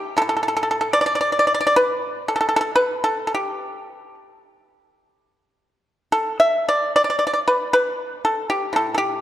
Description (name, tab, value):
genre	chinese traditional, Chinese solo plucked strings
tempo	56 BPM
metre	2/4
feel	uneven beats, rubato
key	unclear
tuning	A4 = 441 Hz
part	pipa	solo	0.0-9.2 s	A2 to E5	-18 LUFS	equal	none
room	moderate concert hall reverb, RT60 2.5 s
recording	dark, warm production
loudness	-18 LUFS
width	side -12 dB against mid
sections	0.0-9.2 A section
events	none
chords	none